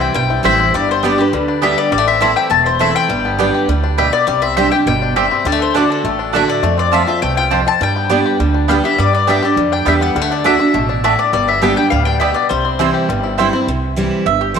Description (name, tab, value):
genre	bluegrass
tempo	204 BPM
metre	4/4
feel	straight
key	C major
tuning	A4 = 440 Hz
part	bluegrass banjo	melody	0.0-13.7 s	G3 to G4	-22 LUFS	left 8 dB	none
part	mandolin	melody	0.0-13.3 s	A4 to A5	-16 LUFS	left 7 dB	none
part	picked steel-string acoustic guitar	accompaniment	0.0-14.6 s	E2 to G4	-18 LUFS	right 3 dB	none
part	upright bass	bass	0.0-14.6 s	E1 to G2	-21 LUFS	right 2 dB	none
part	mandolin	stabs	0.4-14.6 s	A3 to A5	-20 LUFS	right 10 dB	slapback echo
room	wet echo chamber reverb, RT60 2.7 s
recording	1960s-style stereo with parts hard left and right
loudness	-12 LUFS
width	side -6 dB against mid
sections	0.0-13.7 A section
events	none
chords	0.0 C; 0.7 G; 1.9 Am; 3.1 G; 4.3 Csus2; 5.5 D; 6.6 F; 7.8 G; 10.2 D; 11.3 G; 12.5 C